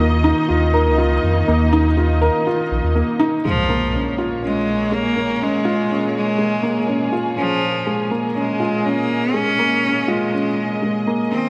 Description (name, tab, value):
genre	piano and strings electronica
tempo	122 BPM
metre	4/4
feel	straight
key	Bb minor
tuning	A4 = 445 Hz
part	muted studio string section	sustained chords	0.0-11.5 s	Bb2 to Eb5	-26 LUFS	equal	none
part	dark upright piano	riff	0.0-11.5 s	Ab3 to Bb4	-22 LUFS	equal	none
part	warm sub bass	bass	0.0-3.0 s	Bb1 to F2	-20 LUFS	equal	none
part	clear cello	melody	3.4-11.5 s	F3 to Db4	-23 LUFS	equal	none
part	impact	sound effects	3.5-5.4 s	none	-29 LUFS	equal	none
room	moderate lush hall reverb, RT60 2.4 s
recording	none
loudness	-19 LUFS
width	mono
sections	0.0-3.4 A section; 3.4-11.5 B section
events	impact 3.4-5.4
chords	0.0 Bbm7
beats	0.01 0.50 0.99 | 1.48 1.97 2.46 2.96 | 3.45 3.94 4.43 4.92 | 5.42 5.91 6.40 6.89 | 7.38 7.88 8.37 8.86 | 9.35 9.84 10.33 10.83 | 11.32